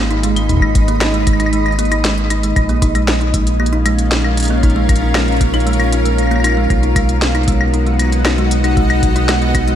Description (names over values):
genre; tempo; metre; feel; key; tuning
IDM; 116 BPM; 4/4; straight; unclear; A4 = 441 Hz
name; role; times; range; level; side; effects
granular cloud pad; sustained chords; 0.0-9.8 s; G#3 to B5; -19 LUFS; equal; built-in reverb
kalimba; arpeggios; 0.0-9.7 s; G#3 to D#4; -20 LUFS; right 2 dB; tape echo
round analog bass; bass; 0.0-9.8 s; G#1 to B1; -16 LUFS; equal; none
industrial drum kit; drums; 0.1-9.8 s; claves, hi-hat, snare drum; -20 LUFS; left 2 dB; studio reverb, ping-pong delay
electronic kick drum; drums; 0.5-9.6 s; none; -16 LUFS; equal; studio reverb
room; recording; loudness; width
light reverb; none; -12 LUFS; side -10 dB against mid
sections
0.0-9.8 A section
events
none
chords
0.0 G#m; 2.6 A#m7; 6.7 B